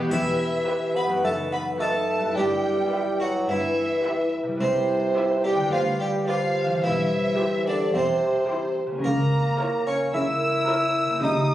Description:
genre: cinematic, playful, whimsical film cue.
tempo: 108 BPM.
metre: 4/4.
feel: straight.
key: E minor.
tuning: A4 = 439 Hz.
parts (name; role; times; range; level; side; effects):
rich studio violin section; melody; 0.0-11.5 s; B4 to E6; -31 LUFS; left 1 dB; none.
rich studio violin section; second line; 0.0-11.1 s; G4 to E5; -36 LUFS; left 1 dB; none.
rich studio viola section; accompaniment; 0.0-11.1 s; B3 to B4; -35 LUFS; right 1 dB; none.
concert harp; arpeggios; 0.0-11.5 s; F#2 to C5; -33 LUFS; left 2 dB; none.
warm studio cello section; bass; 0.0-11.5 s; C2 to C#3; -31 LUFS; right 1 dB; none.
harpsichord; melody; 0.1-11.5 s; C4 to E5; -31 LUFS; equal; none.
mellow bassoon; accompaniment; 0.1-11.5 s; C3 to E4; -25 LUFS; right 1 dB; none.
mellow French horn section; sustained chords; 0.1-11.5 s; D#4 to C5; -29 LUFS; left 2 dB; none.
rich studio double bass section; bass; 0.1-11.5 s; E1 to D2; -30 LUFS; equal; none.
triangle; percussion; 0.1-1.2 s; none; -45 LUFS; left 1 dB; none.
room: wet scoring stage reverb, RT60 2.0 s.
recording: recorded on a phone in the room, club reverb, compression.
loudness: -21 LUFS.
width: side -13 dB against mid.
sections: 0.1-11.5 A section.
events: none.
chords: 0.1 Em; 1.2 B7/F#; 2.4 Em/G; 4.6 Cmaj7; 5.7 G7/D; 6.8 C/E; 9.0 A#dim/C#.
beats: | 0.12 0.68 1.25 1.81 | 2.37 2.93 3.49 4.05 | 4.61 5.17 5.72 6.28 | 6.84 7.39 7.94 8.49 | 9.04 9.60 10.15 10.69 | 11.24.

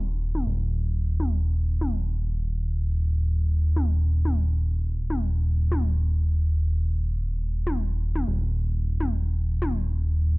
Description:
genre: melodic techno.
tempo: 123 BPM.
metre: 4/4.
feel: straight.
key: unclear.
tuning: A4 = 440 Hz.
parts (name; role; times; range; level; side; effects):
fat analog bass; bass; 0.0-10.4 s; Eb1; -23 LUFS; equal; none.
electronic toms; drums; 0.3-9.7 s; none; -32 LUFS; left 2 dB; low-pass filter on toms.
room: little or no reverb.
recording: low-pass filter.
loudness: -23 LUFS.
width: side -25 dB against mid.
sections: 0.0-10.4 A section.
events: filter sweep 0.0-10.4.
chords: none.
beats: | 0.47 0.96 1.44 1.93 | 2.42 2.91 3.40 3.88 | 4.37 4.86 5.35 5.83 | 6.32 6.81 7.30 7.79 | 8.27 8.76 9.25 9.74 | 10.22.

